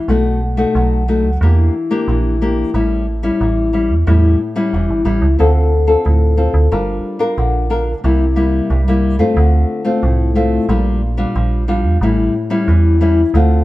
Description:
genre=samba and choro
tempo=91 BPM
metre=4/4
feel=straight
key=unclear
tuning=A4 = 441 Hz
part: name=nylon-string guitar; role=accompaniment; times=0.0-13.6 s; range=G2 to Bb4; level=-16 LUFS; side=left 2 dB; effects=none
part: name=metallic FM bass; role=bass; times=0.1-13.6 s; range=E1 to G2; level=-14 LUFS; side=right 1 dB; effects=none
room=moderate spring reverb, RT60 1.3 s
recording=heard from further back in the room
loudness=-12 LUFS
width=side -17 dB against mid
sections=0.0-13.6 A section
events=none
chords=0.1 B7; 1.4 Em7b5; 2.7 A7; 5.4 Dm7; 6.7 Gm7; 8.0 C7; 9.4 Dm7; 10.7 Bb6; 12.0 A7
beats=| 0.09 0.75 1.42 2.08 | 2.74 3.40 4.07 4.73 | 5.39 6.05 6.72 7.38 | 8.04 8.70 9.37 10.03 | 10.69 11.35 12.01 12.68 | 13.34

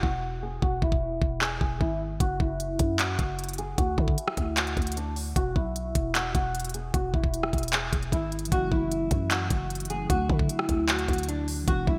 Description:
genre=hip hop, trap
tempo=152 BPM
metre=4/4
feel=half-time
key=unclear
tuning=A4 = 440 Hz
part: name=flamenco guitar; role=melody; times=0.0-12.0 s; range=D4 to G#4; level=-33 LUFS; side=equal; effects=lush chorus, low-pass filter
part: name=growling 808-style bass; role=bass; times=0.0-12.0 s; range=E1 to D3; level=-34 LUFS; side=equal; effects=none
part: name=trap drum kit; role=drums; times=0.0-12.0 s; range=handclaps, hi-hat, kick drum, rim click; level=-29 LUFS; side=equal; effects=gated reverb
part: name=mellow tine electric piano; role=accompaniment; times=8.5-12.0 s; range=D3 to E4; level=-37 LUFS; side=equal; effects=low-pass filter
room=light reverb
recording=bright 1980s-style digital production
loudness=-27 LUFS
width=mono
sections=0.0-12.0 A section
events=break 0.0-2.2; filter sweep 0.0-8.5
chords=0.0 E; 2.2 Esus2/F#; 3.8 Dadd9; 5.4 E; 8.5 F#m7; 10.1 D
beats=0.23 | 0.62 1.02 1.41 1.81 | 2.20 2.60 2.99 3.39 | 3.78 4.18 4.57 4.97 | 5.36 5.75 6.15 6.54 | 6.94 7.33 7.73 8.12 | 8.52 8.91 9.31 9.70 | 10.10 10.49 10.89 11.28 | 11.68

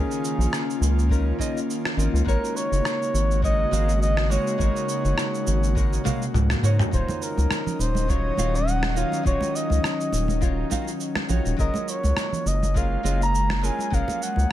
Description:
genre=sunset chillout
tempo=103 BPM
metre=4/4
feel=swing 55% on 16ths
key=Eb minor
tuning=A4 = 440 Hz
part: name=trumpet with bucket mute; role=melody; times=0.0-14.5 s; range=Ab4 to Bb5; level=-28 LUFS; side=equal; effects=ping-pong delay
part: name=nylon-string guitar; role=accompaniment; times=0.0-14.5 s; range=Db3 to F5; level=-32 LUFS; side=moving between left 3 dB and right 3 dB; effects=auto-pan, digital delay
part: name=airy breathy pad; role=sustained chords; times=0.0-14.5 s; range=Db3 to Eb5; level=-29 LUFS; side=left 2 dB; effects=chorus
part: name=round analog bass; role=bass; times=0.0-14.5 s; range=Eb1 to Ab2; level=-22 LUFS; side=equal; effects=none
part: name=dusty soul sampler-style drum kit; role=drums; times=0.1-14.5 s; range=rim click, shaker, toms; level=-30 LUFS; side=equal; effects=none
part: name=electronic kick drum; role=drums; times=1.1-14.0 s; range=none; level=-26 LUFS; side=equal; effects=overdrive
part: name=congas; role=percussion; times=7.1-14.5 s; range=none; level=-33 LUFS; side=right 3 dB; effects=none
room=digital ambience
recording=none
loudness=-21 LUFS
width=side -13 dB against mid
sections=0.0-14.5 A section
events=drum fill 6.1-6.9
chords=0.0 Db69; 2.3 Ab9sus4; 6.9 Ebm9; 11.6 Gbmaj9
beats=0.52 1.10 1.68 | 2.27 2.85 3.43 4.01 | 4.60 5.18 5.76 6.34 | 6.93 7.51 8.09 8.67 | 9.26 9.84 10.42 11.00 | 11.59 12.17 12.75 13.33 | 13.92 14.50

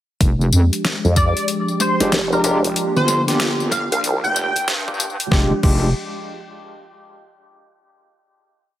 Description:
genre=glitch hop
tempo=94 BPM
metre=4/4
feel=swing 64% on 16ths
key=F dorian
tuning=A4 = 438 Hz
part: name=warm analog pad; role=sustained chords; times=0.2-5.6 s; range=F3 to G4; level=-26 LUFS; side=right 1 dB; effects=chorus, sidechain pumping
part: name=wobble bass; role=bass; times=0.2-5.9 s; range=F1 to G2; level=-19 LUFS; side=equal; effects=chorus
part: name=dubstep drum kit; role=drums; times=0.2-5.8 s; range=crash cymbal, hi-hat, snare drum, tambourine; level=-23 LUFS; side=left 2 dB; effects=overdrive, small room ambience
part: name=electronic kick drum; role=drums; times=0.2-5.8 s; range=none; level=-17 LUFS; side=equal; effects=overdrive, small room ambience
part: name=vowel-sweep wobble bass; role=bass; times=1.0-4.2 s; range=F1 to F2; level=-19 LUFS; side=equal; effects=chorus
part: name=sync lead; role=melody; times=1.2-4.7 s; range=Bb4 to G5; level=-23 LUFS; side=equal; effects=ensemble chorus, dub echo
part: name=barky tine electric piano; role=stabs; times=2.0-5.9 s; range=Ab3 to G4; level=-24 LUFS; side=equal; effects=overdrive, fast tremolo, sidechain pumping, low-pass filter, dub echo
room=moderate plate reverb, RT60 1.6 s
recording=heavily compressed radio sound, multiband compression, high-pass filter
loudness=-16 LUFS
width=side -13 dB against mid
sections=0.2-5.3 build; 5.3-7.9 final chord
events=build-up 0.2-5.3; filter sweep 0.2-5.3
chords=0.2 Fm69; 2.8 Gm7; 5.3 Fm69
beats=| 0.21 0.84 1.48 2.12 | 2.76 3.40 4.04 4.67 | 5.31

